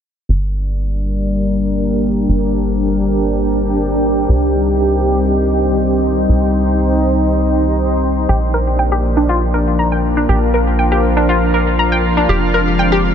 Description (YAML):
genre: techno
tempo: 120 BPM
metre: 4/4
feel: straight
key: G phrygian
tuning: A4 = 441 Hz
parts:
  - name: dark analog pad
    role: sustained chords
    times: 0.3-13.1 s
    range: F3 to Eb5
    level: -18 LUFS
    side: left 3 dB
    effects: chorus, vintage 12-bit sampler grit
  - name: tight sequencer bass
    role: bass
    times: 0.3-13.1 s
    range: F1 to C2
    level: -18 LUFS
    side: equal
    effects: none
  - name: granular cloud pad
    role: texture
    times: 1.4-13.1 s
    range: C4 to G5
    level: -18 LUFS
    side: right 1 dB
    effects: built-in reverb
  - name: analog pluck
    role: arpeggios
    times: 8.3-13.0 s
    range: D4 to Bb5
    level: -17 LUFS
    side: left 1 dB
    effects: chorus, ping-pong delay
room: light reverb, digital ambience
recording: low-pass filter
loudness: -13 LUFS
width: side -8 dB against mid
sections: 0.3-13.1 A section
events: filter sweep 0.3-13.1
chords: 0.3 Gm; 4.3 Cm; 8.3 Bb; 12.3 Fm